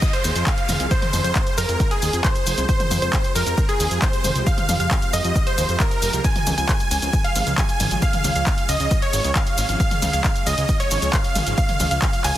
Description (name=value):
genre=uplifting trance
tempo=135 BPM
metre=4/4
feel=straight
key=F minor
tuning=A4 = 440 Hz
part: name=supersaw chords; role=melody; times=0.0-12.4 s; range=Ab4 to Ab5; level=-24 LUFS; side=right 1 dB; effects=sidechain pumping, dub echo
part: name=wide unison pluck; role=second line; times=0.0-12.4 s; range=Ab4 to Ab5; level=-30 LUFS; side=equal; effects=cassette tape, sidechain pumping, dub echo
part: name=shimmering ambient pad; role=sustained chords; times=0.0-12.4 s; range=F3 to Ab4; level=-32 LUFS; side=right 1 dB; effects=chorus, built-in reverb, sidechain pumping
part: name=electronic kick drum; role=drums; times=0.0-12.1 s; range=none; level=-21 LUFS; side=equal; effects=none
part: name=punchy analog drum machine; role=drums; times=0.0-12.3 s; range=handclaps, hi-hat, ride cymbal, shaker, toms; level=-25 LUFS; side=equal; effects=none
part: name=downlifter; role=sound effects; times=0.0-2.7 s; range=none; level=-34 LUFS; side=equal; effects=none
part: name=fat analog bass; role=bass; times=0.2-12.3 s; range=F1 to F2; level=-24 LUFS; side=equal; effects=sidechain pumping
room=little or no reverb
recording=dense, heavily limited modern master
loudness=-18 LUFS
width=side -13 dB against mid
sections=0.0-12.4 A section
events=none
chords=0.0 Fm; 6.2 Db